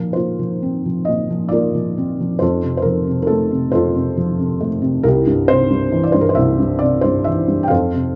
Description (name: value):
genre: classical, lyrical solo piano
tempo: 45 BPM (dotted quarters)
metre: 6/8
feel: rubato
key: unclear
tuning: A4 = 442 Hz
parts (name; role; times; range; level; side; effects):
- felt-muted upright piano; solo; 0.0-8.2 s; C2 to G5; -17 LUFS; equal; none
room: light reverb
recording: dark, warm production, nothing above 7.9 kHz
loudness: -17 LUFS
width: mono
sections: 0.0-8.2 A section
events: none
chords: 0.0 Bbsus2; 2.4 F; 5.1 C